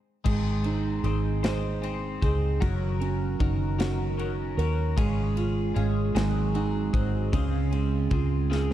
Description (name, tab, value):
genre	six-eight pop ballad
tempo	51 BPM (dotted quarters)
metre	6/8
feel	straight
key	unclear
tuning	A4 = 440 Hz
part	twelve-string electric guitar	arpeggios	0.2-8.7 s	Ab2 to C5	-34 LUFS	left 8 dB	phaser, slapback echo
part	felt-muted upright piano	accompaniment	0.3-8.7 s	Db3 to C5	-29 LUFS	right 6 dB	none
part	vintage muted fingered electric bass	bass	0.3-8.7 s	Gb1 to Eb2	-27 LUFS	left 1 dB	none
part	modern studio drum kit	drums	0.3-8.7 s	crash cymbal, kick drum, ride cymbal, snare drum	-30 LUFS	left 1 dB	none
room	studio ambience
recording	dark, warm production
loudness	-24 LUFS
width	side -12 dB against mid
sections	0.3-8.7 A section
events	stop 0.0; drum fill 8.5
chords	0.3 Ab; 2.6 Ebm7/Gb; 5.0 Db/Ab; 6.2 Ab7; 7.3 Dbmaj7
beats	| 0.25 1.44 | 2.62 3.79 | 4.97 6.15 | 7.33 8.51